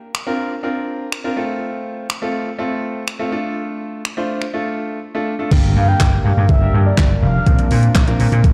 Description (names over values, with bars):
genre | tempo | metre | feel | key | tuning
dance-pop | 123 BPM | 4/4 | straight | unclear | A4 = 438 Hz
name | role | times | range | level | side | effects
gated 80s digital drum machine | drums | 0.1-8.5 s | crash cymbal, finger snaps, handclaps, hi-hat, kick drum, snare drum | -19 LUFS | equal | gated reverb, gated reverb snare, overdrive
clear baby grand piano | accompaniment | 0.3-8.4 s | A3 to C5 | -25 LUFS | equal | sidechain pumping
sweeping resonant pad | sustained chords | 5.5-8.5 s | G3 to Bb4 | -29 LUFS | equal | chorus, sidechain pumping
vintage slap bass | bass | 5.5-8.5 s | F1 to Bb2 | -17 LUFS | equal | sidechain pumping
mellow horn-like synth lead | melody | 5.8-7.9 s | D5 to G5 | -26 LUFS | equal | chorus, dub echo
room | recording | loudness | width
light reverb | played on a big sound system in a bare room, large studio reverb | -18 LUFS | mono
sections
0.0-5.5 A section; 5.5-8.5 B section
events
silent gap 4.5-5.5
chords
0.0 Bbadd9; 1.4 F/A; 3.3 Dm; 5.5 Gm; 7.5 Bbadd9